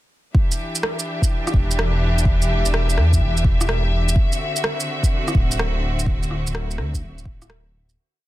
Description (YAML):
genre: future garage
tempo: 126 BPM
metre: 4/4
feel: swing 67% on 16ths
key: E minor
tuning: A4 = 443 Hz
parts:
  - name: electronic kick drum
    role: drums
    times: 0.3-7.4 s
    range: none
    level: -19 LUFS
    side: equal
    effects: overdrive
  - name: rich symphonic string section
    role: sustained chords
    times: 0.4-7.9 s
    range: D3 to E5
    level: -26 LUFS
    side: left 1 dB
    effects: vintage 12-bit sampler grit, sidechain pumping
  - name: electronic shaker and rim click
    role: drums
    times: 0.5-8.0 s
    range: none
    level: -26 LUFS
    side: right 1 dB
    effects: overdrive
  - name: dark detuned saw bass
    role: bass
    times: 1.5-8.0 s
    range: D1 to E2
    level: -20 LUFS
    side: equal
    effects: sidechain pumping
room: little or no reverb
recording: dense, heavily limited modern master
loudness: -18 LUFS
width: side -16 dB against mid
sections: 0.4-8.0 groove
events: fade-out 5.4-8.0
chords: 0.4 Em7; 4.2 D9